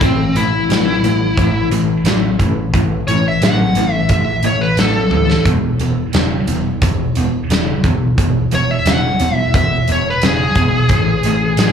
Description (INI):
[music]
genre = blues rock power trio and southern rock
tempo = 88 BPM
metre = 4/4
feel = straight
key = A major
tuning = A4 = 440 Hz
[part]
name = smooth overdriven lead guitar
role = melody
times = 0.0-11.7 s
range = C4 to F#5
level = -18 LUFS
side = left 2 dB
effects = slapback echo, analog delay
[part]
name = overdriven electric guitar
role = riff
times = 0.0-11.7 s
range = E2 to F#3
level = -17 LUFS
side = left 1 dB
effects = tremolo, slapback echo
[part]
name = overdriven picked electric bass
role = bass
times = 0.0-11.7 s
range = E1 to D2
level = -20 LUFS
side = right 1 dB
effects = none
[part]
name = big rock drum kit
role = drums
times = 0.0-11.7 s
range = hi-hat, kick drum, snare drum, toms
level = -18 LUFS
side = equal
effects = none
[sound]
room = moderate club reverb, RT60 0.6 s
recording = live gig heard through the venue's PA, club reverb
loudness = -13 LUFS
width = side -7 dB against mid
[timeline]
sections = 0.0-11.7 A section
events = drum fill 5.1-5.5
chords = 0.0 A5; 5.5 E5; 10.9 A5